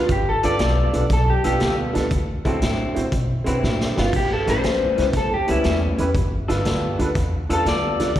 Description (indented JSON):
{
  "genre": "electric blues shuffle",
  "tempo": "119 BPM",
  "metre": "4/4",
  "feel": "swing 68% on 8ths",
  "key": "unclear",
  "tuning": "A4 = 440 Hz",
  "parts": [
    { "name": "electric slide guitar", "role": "melody", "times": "0.0-8.2 s", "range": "E4 to D5", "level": "-22 LUFS", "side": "left 1 dB", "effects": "slapback echo" },
    { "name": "warm upright piano", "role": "accompaniment", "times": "0.0-8.1 s", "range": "B3 to D5", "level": "-26 LUFS", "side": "right 2 dB", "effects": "slapback echo" },
    { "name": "upright bass", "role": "bass", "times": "0.0-8.2 s", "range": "G1 to B2", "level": "-23 LUFS", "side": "equal", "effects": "none" },
    { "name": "vintage drum kit", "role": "drums", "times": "0.1-8.2 s", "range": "crash cymbal, hi-hat, kick drum, snare drum", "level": "-26 LUFS", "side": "equal", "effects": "none" },
    { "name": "electric guitar through a small old amp", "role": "riff", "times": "0.4-8.1 s", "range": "A2 to A4", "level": "-27 LUFS", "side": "left 1 dB", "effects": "slapback echo" }
  ],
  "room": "light reverb, small room ambience",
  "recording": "live gig heard through the venue's PA, recital hall reverb",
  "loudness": "-18 LUFS",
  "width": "side -12 dB against mid",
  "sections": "0.0-8.2 A section",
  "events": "electric slide guitar solo 0.0-8.2; drum fill 3.6-4.1",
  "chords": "0.0 G9; 2.1 D9; 4.1 A9; 6.1 G9",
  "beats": "| 0.10 0.60 1.11 1.61 | 2.12 2.62 3.12 3.63 | 4.13 4.63 5.14 5.64 | 6.14 6.65 7.15 7.65 | 8.16"
}